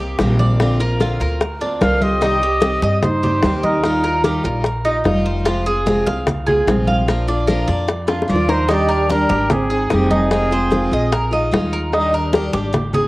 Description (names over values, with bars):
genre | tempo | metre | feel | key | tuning
latin, Cuban son and guajira | 148 BPM | 4/4 | straight | Eb major | A4 = 440 Hz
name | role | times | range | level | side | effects
picked steel-string acoustic guitar | accompaniment | 0.0-13.1 s | C3 to Ab4 | -23 LUFS | left 2 dB | cassette tape
Cuban tres | arpeggios | 0.0-13.1 s | D4 to F5 | -22 LUFS | right 1 dB | cassette tape
upright bass | bass | 0.0-13.1 s | F1 to G2 | -21 LUFS | equal | none
congas | percussion | 0.0-13.1 s | none | -23 LUFS | equal | none
bongos | percussion | 0.2-12.9 s | none | -21 LUFS | left 2 dB | none
breathy trumpet | melody | 1.8-4.5, 8.3-11.3 s | G4 to F5 | -21 LUFS | equal | none
mellow hollow concert flute | second line | 1.8-4.4, 8.3-11.3 s | C4 to Bb4 | -23 LUFS | right 3 dB | cassette tape
room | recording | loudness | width
moderate spring reverb, RT60 1.4 s, studio reverb | home recording on cassette | -15 LUFS | side -19 dB against mid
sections
0.0-8.7 A section; 8.7-13.1 B section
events
drum fill 8.1-8.7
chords
0.0 Cm7; 0.6 Bbadd9; 2.2 Cm; 3.8 Ebadd9; 5.5 Fm; 7.1 Bb; 8.7 Ebmaj7; 9.5 Abmaj7; 10.3 Fm7; 11.1 Bb7sus4; 11.9 Ebmaj7